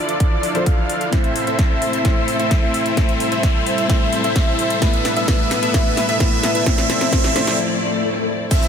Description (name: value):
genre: EDM, festival progressive house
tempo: 130 BPM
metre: 4/4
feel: straight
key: unclear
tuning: A4 = 443 Hz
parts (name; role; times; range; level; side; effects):
- dark concert grand piano; accompaniment; 0.0-8.5 s; A2 to E5; -24 LUFS; left 4 dB; sidechain pumping, ping-pong delay
- rich studio string section; sustained chords; 0.0-8.7 s; C3 to D5; -26 LUFS; equal; sidechain pumping
- wide unison lead; arpeggios; 0.0-8.7 s; C5 to F5; -24 LUFS; equal; sidechain pumping, ping-pong delay
- dense compressed supersaw; riff; 0.0-8.7 s; B3 to F5; -23 LUFS; right 1 dB; sidechain pumping, low-pass filter, ping-pong delay
- riser, swell and downlifter; sound effects; 0.0-8.7 s; none; -25 LUFS; left 2 dB; none
- big-room dance drum kit; drums; 0.1-8.7 s; crash cymbal, hi-hat, ride cymbal, shaker, snare drum; -26 LUFS; equal; none
- electronic kick drum; drums; 0.2-8.6 s; none; -17 LUFS; equal; none
room: light reverb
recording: none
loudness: -15 LUFS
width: side -7 dB against mid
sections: 0.0-8.5 A section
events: build-up 0.0-8.5; riser 0.0-7.6; filter sweep on analog synth lead 0.0-8.5; drum fill 1.1-7.6; break 7.6-8.5; swell 7.6-8.5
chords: 0.0 Dmadd9; 1.1 Am; 3.0 C; 4.8 G; 6.7 Dmadd9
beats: 0.20 0.66 | 1.12 1.59 2.05 2.51 | 2.97 3.43 3.90 4.36 | 4.82 5.28 5.74 6.20 | 6.66 7.12 7.59 8.05 | 8.51